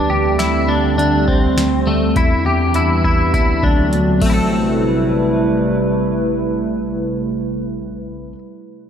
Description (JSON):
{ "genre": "dream pop", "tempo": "102 BPM", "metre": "4/4", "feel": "straight", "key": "A dorian", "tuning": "A4 = 440 Hz", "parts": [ { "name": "warbly tape-like pad", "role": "sustained chords", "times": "0.0-7.6 s", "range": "C3 to B4", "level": "-18 LUFS", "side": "right 1 dB", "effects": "chorus, built-in reverb" }, { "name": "clean electric guitar", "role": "arpeggios", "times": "0.0-8.4 s", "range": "A3 to A4", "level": "-19 LUFS", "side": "left 2 dB", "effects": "analog chorus, analog delay" }, { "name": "mellow tine electric piano", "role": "bass", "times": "0.0-8.3 s", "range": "A1 to E2", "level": "-22 LUFS", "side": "equal", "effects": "medium stereo tremolo" }, { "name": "booming analog drum machine", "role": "drums", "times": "0.4-4.4 s", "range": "crash cymbal, hi-hat, kick drum, snare drum", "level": "-18 LUFS", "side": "equal", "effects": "none" } ], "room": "moderate plate reverb, RT60 2.0 s", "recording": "dreamy mix soaked in reverb", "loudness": "-14 LUFS", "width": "side -8 dB against mid", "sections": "0.0-4.5 A section; 4.5-6.9 B section", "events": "none", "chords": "0.0 D7sus4; 2.2 Em7; 3.3 D7; 4.2 Am9", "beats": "0.39 0.98 1.57 | 2.16 2.74 3.33 3.92 | 4.51 5.10 5.68 6.27" }